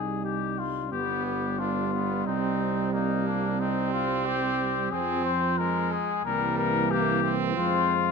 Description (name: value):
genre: classical, brass quintet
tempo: 90 BPM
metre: 4/4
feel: rubato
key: C minor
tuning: A4 = 439 Hz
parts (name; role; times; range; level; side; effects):
- mellow trumpet; melody; 0.0-8.1 s; D4 to C5; -28 LUFS; left 11 dB; none
- mellow French horn; accompaniment; 0.0-8.1 s; Ab3 to Eb4; -34 LUFS; left 4 dB; none
- mellow trombone; accompaniment; 0.0-8.1 s; E3 to G3; -32 LUFS; right 5 dB; none
- warm tuba; bass; 0.0-8.1 s; G1 to F2; -32 LUFS; right 4 dB; none
- clear trumpet; second line; 0.9-7.9 s; G3 to D4; -32 LUFS; right 9 dB; none
room: moderate scoring stage reverb, RT60 1.6 s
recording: none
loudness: -24 LUFS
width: side -5 dB against mid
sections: 0.0-8.1 A section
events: none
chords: 0.0 Cm; 0.9 G7; 2.3 Cm; 4.9 Fm; 6.3 C7; 7.6 Fm